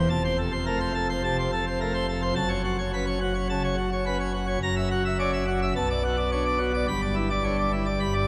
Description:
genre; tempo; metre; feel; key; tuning
classical, organ toccata; 106 BPM; 4/4; straight; unclear; A4 = 439 Hz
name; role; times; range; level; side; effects
pipe organ, plenum; solo; 0.0-8.3 s; F1 to B5; -26 LUFS; equal; none
room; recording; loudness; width
wet church reverb, RT60 4.0 s; none; -26 LUFS; mono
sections
0.0-8.3 A section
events
none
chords
0.1 F; 2.4 F#m; 4.6 F#7; 5.7 Bm7; 6.9 Em7/G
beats
| 0.10 0.66 1.23 1.79 | 2.35 2.92 3.48 4.05 | 4.61 5.17 5.74 6.31 | 6.88 7.44 8.01

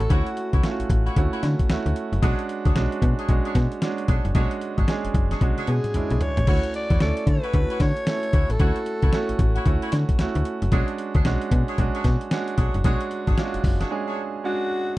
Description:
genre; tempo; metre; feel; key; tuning
R&B, new jack swing; 113 BPM; 4/4; swing 62% on 16ths; B dorian; A4 = 440 Hz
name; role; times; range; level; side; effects
growling alto saxophone; melody; 0.0-0.6, 5.7-9.6, 14.5-15.0 s; F#4 to D5; -28 LUFS; left 1 dB; slapback echo
clear baby grand piano; accompaniment; 0.0-15.0 s; G#3 to A4; -28 LUFS; right 4 dB; none
warm horn section; stabs; 0.0-14.2 s; D4 to C#5; -33 LUFS; left 1 dB; slapback echo
slap-like FM bass; bass; 0.0-13.8 s; F#1 to D3; -23 LUFS; equal; none
dusty soul sampler-style drum kit; drums; 0.0-13.9 s; crash cymbal, hi-hat, kick drum, snare drum, toms; -22 LUFS; equal; none
room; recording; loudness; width
little or no reverb; dry, close 1970s-style studio recording; -20 LUFS; side -18 dB against mid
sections
0.0-15.0 A section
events
drum fill 5.4-6.5; break 13.9-15.0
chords
0.0 Dmaj9; 2.2 Bm69; 6.5 Dmaj9; 10.7 Bm69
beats
| 0.10 0.63 1.16 1.69 | 2.23 2.76 3.29 3.82 | 4.35 4.88 5.41 5.94 | 6.47 7.00 7.54 8.07 | 8.60 9.13 9.66 10.19 | 10.72 11.25 11.78 12.31 | 12.85 13.38 13.91 14.44 | 14.97

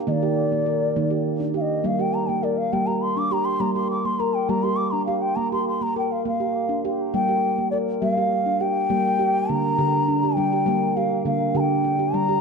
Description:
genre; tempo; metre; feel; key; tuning
world meditative, meditative tuned percussion; 68 BPM (dotted quarters); 6/8; straight; G minor pentatonic; A4 = 437 Hz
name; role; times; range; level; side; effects
handpan; arpeggios; 0.0-12.4 s; D3 to Bb4; -22 LUFS; right 2 dB; none
bansuri; melody; 0.1-12.4 s; D5 to D6; -24 LUFS; left 2 dB; ping-pong delay
room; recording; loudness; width
wet recital hall reverb, RT60 1.5 s; none; -20 LUFS; side -4 dB against mid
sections
0.0-8.9 A section; 8.9-12.4 B section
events
none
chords
0.1 Eb; 1.8 Gm; 5.4 Bb5; 7.1 Gm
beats
| 0.08 0.96 | 1.84 2.72 | 3.60 4.49 | 5.37 6.25 | 7.13 8.02 | 8.90 9.79 | 10.67 11.55

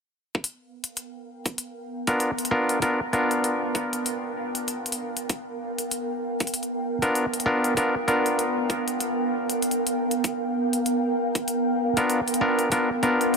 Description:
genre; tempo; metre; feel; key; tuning
glitch hop; 97 BPM; 4/4; swing 58% on 16ths; unclear; A4 = 440 Hz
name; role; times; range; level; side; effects
electronic kick drum; drums; 0.3-12.9 s; none; -28 LUFS; equal; high-pass filter on kick
electronic hi-hat; drums; 0.4-13.4 s; none; -29 LUFS; left 2 dB; none
ethereal airy pad; texture; 0.7-13.4 s; B3 to G5; -27 LUFS; right 1 dB; ensemble chorus, built-in reverb, sidechain pumping
clav; stabs; 2.1-13.4 s; B3 to A#4; -25 LUFS; equal; vintage 12-bit sampler grit, sidechain pumping, low-pass filter, tape echo
room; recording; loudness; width
wet huge ambient reverb, RT60 8.5 s; dreamy mix soaked in reverb; -23 LUFS; side -4 dB against mid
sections
0.3-13.4 A section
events
fade-in on ambient pad 0.3-13.4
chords
0.3 G7#9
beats
| 0.35 0.97 1.59 2.21 | 2.82 3.44 4.06 4.68 | 5.30 5.92 6.54 7.15 | 7.77 8.39 9.01 9.63 | 10.25 10.87 11.48 12.10 | 12.72 13.34

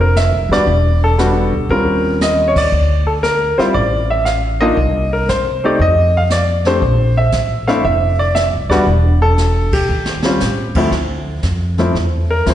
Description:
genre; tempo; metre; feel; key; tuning
jazz piano trio; 117 BPM; 4/4; swing 68% on 8ths; D minor; A4 = 440 Hz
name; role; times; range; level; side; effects
clear grand piano; melody; 0.0-12.5 s; D2 to F5; -15 LUFS; equal; plate reverb, slapback echo
upright bass; bass; 0.0-12.5 s; E1 to C3; -16 LUFS; equal; none
jazz brush drum kit; drums; 0.2-12.5 s; brushed snare drum, crash cymbal, hi-hat, kick drum, snare drum; -23 LUFS; right 1 dB; slapback echo
room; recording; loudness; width
light reverb; live gig heard through the venue's PA, recital hall reverb, nothing above 10.9 kHz; -12 LUFS; side -11 dB against mid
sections
0.0-10.9 A section; 10.9-12.5 B section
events
band accent 2.5, 9.6; drum fill 9.4-10.4; grand piano solo 10.9-12.5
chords
0.0 Bbadd9; 0.7 Em9; 1.7 Eb13; 2.7 Dm; 4.8 Cm; 5.8 F5; 6.8 Bbmaj9#11; 8.9 Esus4; 9.9 Eb69; 10.9 Dm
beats
0.16 | 0.67 1.18 1.70 2.21 | 2.72 3.23 3.75 4.26 | 4.77 5.28 5.80 6.31 | 6.82 7.33 7.84 8.36 | 8.87 9.38 9.90 10.41 | 10.92 11.44 11.95 12.46

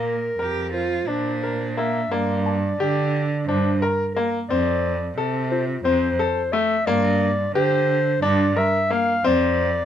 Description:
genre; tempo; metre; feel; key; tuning
contemporary instrumental, chamber music in an uneven meter; 176 BPM (eighths); 7/8; straight; unclear; A4 = 440 Hz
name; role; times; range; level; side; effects
dark clarinet; melody; 0.0-9.8 s; Bb4 to F5; -24 LUFS; left 1 dB; none
bright concert grand piano; arpeggios; 0.0-9.7 s; A3 to Bb4; -23 LUFS; left 3 dB; none
rich cello; bass; 0.0-9.8 s; F2 to D3; -24 LUFS; right 3 dB; none
dark cello; second line; 0.4-2.1 s; D4 to G4; -28 LUFS; right 4 dB; none
small celesta; texture; 2.5-7.2 s; F4 to A5; -34 LUFS; left 6 dB; none
room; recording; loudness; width
light reverb; none; -19 LUFS; side -10 dB against mid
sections
0.0-2.1 A section; 2.1-9.8 B section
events
none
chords
0.0 Bbadd9; 2.1 Gm; 4.5 F6; 6.9 Gm7; 9.2 F5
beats
0.05 0.39 0.73 1.08 1.43 1.78 | 2.12 2.46 2.81 3.15 3.49 3.83 4.17 | 4.50 4.84 5.18 5.51 5.85 6.19 6.53 | 6.87 7.21 7.55 7.89 8.23 8.57 8.91 | 9.25 9.59

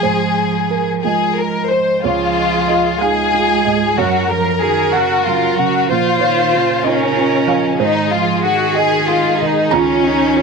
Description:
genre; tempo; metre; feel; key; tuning
neoclassical piano and strings; 62 BPM (dotted quarters); 6/8; rubato; Db major; A4 = 440 Hz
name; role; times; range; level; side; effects
rich chamber violin section; melody; 0.0-10.4 s; Db4 to C5; -16 LUFS; left 6 dB; none
rich cello; second line; 0.0-10.4 s; Db3 to Ab3; -23 LUFS; right 9 dB; none
felt-muted upright piano; accompaniment; 0.0-10.4 s; Db2 to Bb5; -19 LUFS; right 9 dB; none
warm viola; accompaniment; 2.0-10.4 s; Db4 to C5; -20 LUFS; right 11 dB; none
room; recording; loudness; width
light reverb, small room ambience; 1960s-style stereo with parts hard left and right; -13 LUFS; side -4 dB against mid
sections
0.0-2.0 A section; 2.0-10.4 B section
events
none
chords
0.0 Ab6; 2.0 Dbadd9; 4.0 Gb; 5.9 Bbm; 7.8 Ab; 9.7 Dbadd9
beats
| 0.04 1.04 | 2.04 3.01 | 3.98 4.93 | 5.89 6.85 | 7.80 8.75 | 9.73

